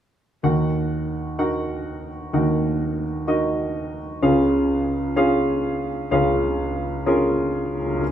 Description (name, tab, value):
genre	pop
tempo	127 BPM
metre	4/4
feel	straight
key	Eb minor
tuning	A4 = 439 Hz
part	warm baby grand piano	accompaniment	0.4-8.0 s	Db2 to Gb5	-20 LUFS	equal	none
room	wet studio reverb, RT60 0.8 s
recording	band playing live in one room, lossy compression artefacts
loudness	-20 LUFS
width	side -10 dB against mid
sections	0.4-8.0 A section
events	none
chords	0.4 Ebm; 4.2 Db